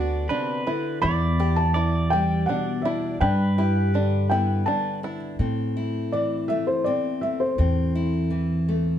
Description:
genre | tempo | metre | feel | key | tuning
acoustic folk duo or small band | 82 BPM | 3/4 | straight | A dorian | A4 = 439 Hz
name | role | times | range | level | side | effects
felt-muted upright piano | melody | 0.0-8.1 s | C5 to B5 | -26 LUFS | equal | slapback echo
pedal steel guitar | second line | 0.0-5.0 s | B4 to D5 | -32 LUFS | right 1 dB | none
fingerpicked steel-string acoustic guitar | accompaniment | 0.0-9.0 s | E2 to G4 | -28 LUFS | left 4 dB | none
open-back banjo | arpeggios | 0.0-5.4 s | D4 to G4 | -30 LUFS | right 4 dB | none
upright bass | bass | 0.0-9.0 s | D2 to A2 | -23 LUFS | equal | none
room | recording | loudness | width
moderate studio reverb, RT60 0.7 s | dark, warm production, faint mains hum | -21 LUFS | side -10 dB against mid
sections
0.0-5.4 A section; 5.4-9.0 B section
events
felt piano solo 5.4-9.0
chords
0.0 Bm/D; 1.0 Em7; 3.2 G; 5.4 Am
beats
0.30 | 1.03 1.75 2.48 | 3.21 3.94 4.67 | 5.40 6.13 6.86 | 7.59 8.32

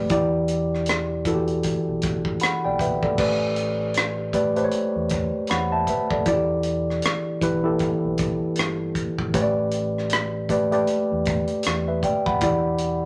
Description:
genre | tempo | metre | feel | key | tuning
R&B, neo-soul | 78 BPM | 4/4 | swing 58% on 16ths | unclear | A4 = 440 Hz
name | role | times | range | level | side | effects
tine electric piano | accompaniment | 0.0-13.1 s | E3 to B5 | -24 LUFS | equal | none
deep dub fingered electric bass | bass | 0.0-13.1 s | E1 to E2 | -34 LUFS | equal | none
tight funk drum kit | drums | 0.1-13.0 s | crash cymbal, hi-hat, kick drum, rim click | -29 LUFS | equal | none
room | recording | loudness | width
moderate studio reverb, RT60 0.5 s | none | -23 LUFS | mono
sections
0.0-3.2 A section; 3.2-13.1 B section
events
none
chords
0.1 Em7; 3.2 A9sus4; 6.3 Em7; 9.3 A9sus4; 12.4 Em7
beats
| 0.11 0.88 1.65 2.42 | 3.19 3.95 4.72 5.49 | 6.26 7.03 7.80 8.57 | 9.34 10.11 10.88 11.65 | 12.41

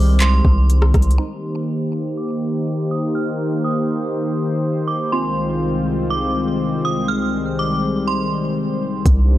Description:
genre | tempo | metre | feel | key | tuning
hip hop, atmospheric cloud-rap | 122 BPM | 4/4 | half-time | C minor | A4 = 440 Hz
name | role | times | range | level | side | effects
metallic FM bell | melody | 0.0-9.0 s | C6 to F6 | -26 LUFS | right 3 dB | chorus, tremolo, low-pass filter, tape echo
warm analog pad | sustained chords | 0.0-9.4 s | C2 to C5 | -20 LUFS | left 1 dB | chorus, sidechain pumping, low-pass filter
long sustained 808-style bass | bass | 0.0-1.2, 9.1-9.4 s | C2 | -14 LUFS | equal | none
warbly dusty pluck | texture | 0.0-9.0 s | C4 to Bb5 | -29 LUFS | right 3 dB | chorus
smooth R&B drum kit | drums | 0.2-1.2, 9.1-9.2 s | handclaps, hi-hat, kick drum, rim click | -17 LUFS | equal | overdrive
room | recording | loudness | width
light reverb | dark, warm production | -17 LUFS | side -14 dB against mid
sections
0.0-1.2 A section; 1.2-9.1 B section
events
filter sweep 1.2-9.1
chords
0.0 Fm7/C; 1.2 Cm9; 5.1 Fm7/C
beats
0.20 0.70 | 1.19 1.68 2.17 2.66 | 3.15 3.65 4.14 4.63 | 5.12 5.61 6.11 6.60 | 7.09 7.58 8.07 8.56 | 9.06

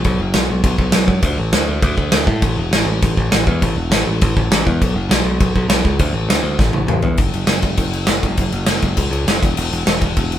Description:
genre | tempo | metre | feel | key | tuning
punk rock | 202 BPM | 4/4 | straight | unclear | A4 = 440 Hz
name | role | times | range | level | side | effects
modern bright picked electric bass | bass | 0.0-10.4 s | E1 to A2 | -18 LUFS | equal | none
big rock drum kit | drums | 0.0-10.4 s | crash cymbal, kick drum, snare drum, toms | -16 LUFS | equal | none
room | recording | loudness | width
light reverb | band playing live in one room | -14 LUFS | side -11 dB against mid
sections
0.0-7.2 A section; 7.2-10.4 B section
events
drum fill 6.6-7.2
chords
none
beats
| 0.05 0.34 0.64 0.94 | 1.23 1.53 1.83 2.12 | 2.42 2.72 3.02 3.31 | 3.61 3.91 4.20 4.50 | 4.80 5.10 5.39 5.69 | 5.99 6.29 6.59 6.88 | 7.18 7.48 7.78 8.08 | 8.38 8.68 8.98 9.28 | 9.57 9.87 10.17

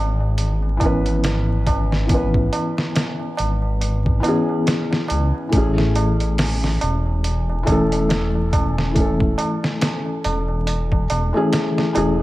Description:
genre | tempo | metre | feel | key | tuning
trip hop | 70 BPM | 4/4 | swing 58% on 16ths | unclear | A4 = 439 Hz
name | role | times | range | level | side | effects
felt-muted upright piano | accompaniment | 0.0-12.2 s | E3 to B4 | -21 LUFS | left 1 dB | harmonic tremolo, low-pass filter, tape echo
dark detuned saw bass | bass | 0.0-12.2 s | E1 to C#2 | -21 LUFS | equal | tube saturation
tabla | percussion | 0.2-12.2 s | none | -29 LUFS | right 4 dB | none
trip hop sampler-style drum kit | drums | 0.4-12.2 s | hi-hat, kick drum, snare drum | -22 LUFS | equal | none
room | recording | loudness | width
studio reverb | vinyl crackle | -17 LUFS | side -17 dB against mid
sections
0.0-12.2 A section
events
none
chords
0.0 C#m7; 5.5 Amaj7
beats
0.38 1.24 | 2.10 2.96 3.81 4.67 | 5.53 6.38 7.24 8.10 | 8.96 9.81 10.67 11.53

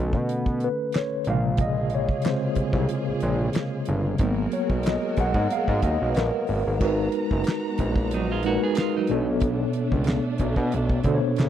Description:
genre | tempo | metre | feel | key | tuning
R&B, neo-soul | 92 BPM | 4/4 | swing 55% on 16ths | G# dorian | A4 = 438 Hz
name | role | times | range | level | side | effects
mellow tine electric piano | accompaniment | 0.0-11.5 s | B2 to F#5 | -25 LUFS | left 1 dB | medium stereo tremolo
fat analog bass | bass | 0.0-11.5 s | F#1 to B2 | -26 LUFS | equal | none
damped 70s drum kit | drums | 0.1-11.5 s | crash cymbal, handclaps, hi-hat, kick drum, snare drum | -26 LUFS | equal | none
warm studio string section | sustained chords | 1.6-11.5 s | G#3 to A#5 | -32 LUFS | right 3 dB | none
clean electric guitar | second line | 8.1-9.3 s | F#3 to G#4 | -29 LUFS | right 6 dB | none
room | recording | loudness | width
small room ambience | dry, close 1970s-style studio recording | -22 LUFS | side -10 dB against mid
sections
0.0-6.8 A section; 6.8-11.5 B section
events
tine electric piano solo 0.0-6.8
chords
0.0 Bm9; 1.3 A#m9; 4.2 G#m9; 9.1 Bm9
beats
0.29 0.94 | 1.59 2.25 2.90 3.55 | 4.20 4.85 5.50 6.16 | 6.81 7.46 8.11 8.77 | 9.42 10.07 10.72 11.38

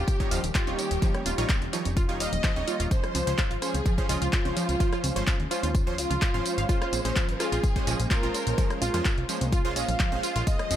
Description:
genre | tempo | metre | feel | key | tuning
progressive house | 127 BPM | 4/4 | straight | unclear | A4 = 440 Hz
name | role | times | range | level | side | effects
warm velvety synth lead | melody | 0.0-10.8 s | F4 to F5 | -35 LUFS | equal | chorus, tape echo
warm studio violin section | second line | 0.0-10.8 s | F4 to F5 | -37 LUFS | equal | sidechain pumping, tape echo
warm analog pad | sustained chords | 0.0-10.8 s | Eb3 to C5 | -37 LUFS | left 1 dB | chorus, sidechain pumping
plucky analog bass | bass | 0.0-10.8 s | Eb1 to F2 | -30 LUFS | equal | sidechain pumping
big-room dance drum kit | drums | 0.1-10.8 s | handclaps, hi-hat, rim click, tambourine | -33 LUFS | equal | none
breakbeat sampler-style drum kit | drums | 0.1-10.8 s | hi-hat, snare drum, tambourine | -42 LUFS | right 1 dB | none
electronic kick drum | drums | 0.1-10.6 s | none | -26 LUFS | equal | none
supersaw stab | stabs | 0.2-10.8 s | F3 to F5 | -35 LUFS | right 3 dB | sidechain pumping, tape echo
wide unison pluck | arpeggios | 0.3-10.8 s | F3 to F5 | -33 LUFS | right 1 dB | sidechain pumping, tape echo
congas and bongos | percussion | 0.7-10.8 s | none | -39 LUFS | right 4 dB | sidechain pumping on perc
room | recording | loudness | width
digital ambience | none | -24 LUFS | side -11 dB against mid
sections
0.0-10.8 A section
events
none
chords
0.0 Eb7; 2.9 Dbmaj7; 6.7 Bbm9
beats
0.08 0.55 | 1.02 1.49 1.97 2.44 | 2.91 3.38 3.86 4.33 | 4.80 5.27 5.75 6.22 | 6.69 7.16 7.64 8.11 | 8.58 9.05 9.53 10.00 | 10.47

